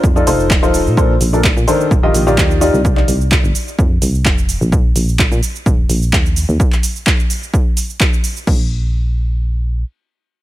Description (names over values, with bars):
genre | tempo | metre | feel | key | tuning
piano house | 128 BPM | 4/4 | straight | unclear | A4 = 440 Hz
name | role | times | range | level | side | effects
warm upright piano | riff | 0.0-2.8 s | Bb2 to Eb5 | -15 LUFS | left 1 dB | sidechain pumping, digital delay
solid FM bass | bass | 0.0-9.8 s | Eb1 to Bb2 | -17 LUFS | equal | sidechain pumping
electronic kick drum | drums | 0.0-8.6 s | none | -14 LUFS | equal | overdrive
punchy analog drum machine | drums | 0.0-8.6 s | crash cymbal, handclaps, hi-hat, shaker | -20 LUFS | right 2 dB | overdrive
room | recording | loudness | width
little or no reverb | none | -12 LUFS | side -15 dB against mid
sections
0.0-8.5 A section; 8.5-10.4 B section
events
drop 0.0-8.5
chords
0.0 F7; 1.0 Bbmaj9; 1.9 Ebmaj9; 2.8 C5; 3.8 F5; 4.7 N.C.; 5.7 Eb5; 6.6 N.C.